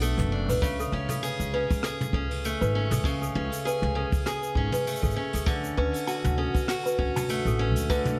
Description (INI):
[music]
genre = folktronica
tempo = 99 BPM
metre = 4/4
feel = swing 56% on 16ths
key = A major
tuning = A4 = 440 Hz
[part]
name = toy piano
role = second line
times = 0.0-8.0 s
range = A4 to A5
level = -35 LUFS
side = equal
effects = delay, plate reverb
[part]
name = picked steel-string acoustic guitar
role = arpeggios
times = 0.0-8.2 s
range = B2 to A4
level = -32 LUFS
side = equal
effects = digital delay, plate reverb
[part]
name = upright bass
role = bass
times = 0.0-8.1 s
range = F#1 to D2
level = -32 LUFS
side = equal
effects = none
[part]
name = jazz brush drum kit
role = drums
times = 0.0-8.2 s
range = hi-hat, rim click, shaker, toms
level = -37 LUFS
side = equal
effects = none
[part]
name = kick drum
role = drums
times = 0.2-8.0 s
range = none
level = -32 LUFS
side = equal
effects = none
[sound]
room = light reverb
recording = vinyl crackle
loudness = -27 LUFS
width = mono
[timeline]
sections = 0.0-8.2 A section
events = none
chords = 0.0 Bm7; 0.6 Amaj7; 5.5 Dmaj7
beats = 0.02 | 0.62 1.23 1.84 2.44 | 3.05 3.65 4.26 4.87 | 5.47 6.08 6.68 7.29 | 7.90